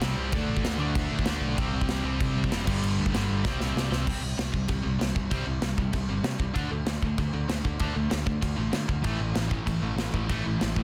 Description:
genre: punk rock.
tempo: 192 BPM.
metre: 4/4.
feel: straight.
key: C major from 4.1 s.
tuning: A4 = 440 Hz.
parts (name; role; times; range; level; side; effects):
distorted electric guitar; riff; 0.0-10.8 s; G2 to D4; -34 LUFS; equal; overdrive.
sludgy distorted guitar; riff; 0.0-4.1, 9.0-10.8 s; G2 to D4; -35 LUFS; equal; overdrive.
picked electric bass; bass; 0.0-10.8 s; F1 to D3; -33 LUFS; equal; none.
big rock drum kit; drums; 0.0-10.8 s; crash cymbal, kick drum, snare drum; -32 LUFS; equal; none.
room: light reverb.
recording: dense, heavily limited modern master.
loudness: -28 LUFS.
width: mono.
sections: 0.0-4.1 A section; 4.1-10.8 B section.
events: drum fill 3.4-4.1.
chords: 0.3 D5; 1.6 C5; 2.7 G5; 3.4 C5; 6.5 D5; 9.0 A5.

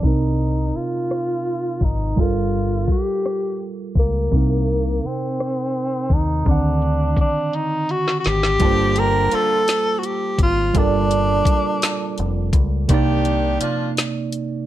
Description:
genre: slow six-eight R&B.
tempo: 56 BPM (dotted quarters).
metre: 6/8.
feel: straight.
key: G minor.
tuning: A4 = 439 Hz.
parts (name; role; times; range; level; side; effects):
warm tenor saxophone; melody; 0.0-12.5 s; Bb3 to Bb4; -21 LUFS; equal; plate reverb.
tine electric piano; accompaniment; 0.0-14.7 s; C3 to A5; -23 LUFS; right 4 dB; overdrive, plate reverb.
deep dub fingered electric bass; bass; 0.0-13.7 s; F1 to Eb2; -21 LUFS; left 1 dB; none.
smooth R&B drum kit; drums; 0.0-14.5 s; hi-hat, kick drum, rim click, snare drum; -20 LUFS; left 1 dB; none.
warm horn section; stabs; 8.6-9.6, 12.9-13.9 s; D3 to G4; -26 LUFS; left 2 dB; plate reverb.
room: light reverb.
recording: low-pass filter.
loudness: -17 LUFS.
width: side -13 dB against mid.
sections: 0.0-8.6 A section; 8.6-14.7 B section.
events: filter sweep 0.0-8.6; drum fill 7.5-8.6.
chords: 0.0 Cm7; 2.2 Gm9; 4.3 Cm7; 6.5 D7b9; 8.6 Gm11; 12.9 Cm9.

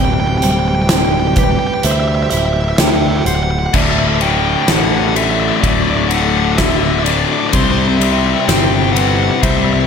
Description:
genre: post-rock.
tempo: 63 BPM.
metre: 4/4.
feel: straight.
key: D mixolydian.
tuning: A4 = 439 Hz.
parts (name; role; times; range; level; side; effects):
dark smooth lead guitar; melody; 0.0-9.9 s; C5 to G5; -20 LUFS; right 2 dB; overdrive, slapback echo, digital delay.
clear studio string section; sustained chords; 0.0-9.9 s; C3 to G4; -26 LUFS; right 2 dB; none.
felt-muted upright piano; arpeggios; 0.0-9.9 s; B4 to E5; -28 LUFS; right 8 dB; slapback echo, digital delay.
twangy electric guitar; arpeggios; 0.0-9.9 s; D2 to C5; -24 LUFS; left 1 dB; none.
fuzz picked electric bass; bass; 0.0-9.9 s; D1 to D2; -17 LUFS; equal; overdrive.
huge arena drum kit; drums; 0.4-9.7 s; crash cymbal, hi-hat, kick drum, ride cymbal, snare drum; -18 LUFS; equal; none.
tight distorted guitar; riff; 3.7-9.9 s; D2 to C4; -16 LUFS; left 11 dB; distortion, slapback echo.
room: light reverb.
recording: none.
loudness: -12 LUFS.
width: side -6 dB against mid.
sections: 0.0-3.7 A section; 3.7-9.9 B section.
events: build-up 3.7-9.9.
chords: 0.0 C/D; 3.7 Dadd9; 7.5 C.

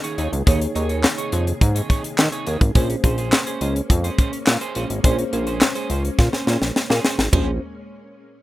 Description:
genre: early-eighties boogie funk.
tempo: 105 BPM.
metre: 4/4.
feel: straight.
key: Bb minor.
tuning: A4 = 440 Hz.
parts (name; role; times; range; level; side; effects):
mellow tine electric piano; accompaniment; 0.0-7.6 s; Bb3 to Db5; -30 LUFS; left 1 dB; medium stereo tremolo.
soft string machine; sustained chords; 0.0-7.6 s; C3 to Ab4; -33 LUFS; equal; ensemble chorus.
clean electric guitar; riff; 0.0-7.5 s; Db4 to Db5; -29 LUFS; right 5 dB; analog chorus.
tight funk drum kit; drums; 0.0-7.5 s; handclaps, hi-hat, kick drum, ride cymbal, snare drum, toms; -18 LUFS; equal; none.
chorused synth bass; bass; 0.2-7.6 s; Ab1 to Eb3; -22 LUFS; equal; none.
room: little or no reverb.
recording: rough home demo mix.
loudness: -18 LUFS.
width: side -16 dB against mid.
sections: 0.0-7.3 A section; 7.3-8.4 B section.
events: drum fill 6.2-7.3.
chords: 0.0 Eb7sus4; 2.8 Bbm9.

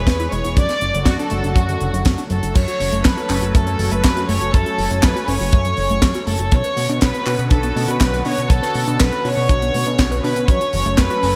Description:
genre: italo disco.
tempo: 121 BPM.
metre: 4/4.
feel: straight.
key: F# minor.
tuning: A4 = 440 Hz.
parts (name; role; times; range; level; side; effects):
warm chamber violin section; melody; 0.0-11.4 s; F#4 to D5; -24 LUFS; equal; digital delay.
lush unison pad; sustained chords; 0.0-11.4 s; D3 to G#5; -29 LUFS; equal; chorus, phaser.
warbly dusty pluck; arpeggios; 0.0-11.3 s; C#3 to B4; -30 LUFS; equal; chorus, digital delay.
fat analog bass; bass; 0.0-11.3 s; E1 to B2; -24 LUFS; equal; none.
kick drum; drums; 0.1-11.1 s; none; -17 LUFS; equal; none.
tight funk drum kit; drums; 0.1-11.3 s; crash cymbal, handclaps, hi-hat, snare drum; -25 LUFS; equal; gated reverb.
room: light reverb, small room reverb.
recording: bright 1980s-style digital production.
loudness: -18 LUFS.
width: mono.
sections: 0.0-2.6 A section; 2.6-11.4 B section.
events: none.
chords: 0.0 E; 0.6 D/F#; 2.6 F#m; 6.5 Bmadd9; 10.5 F#m.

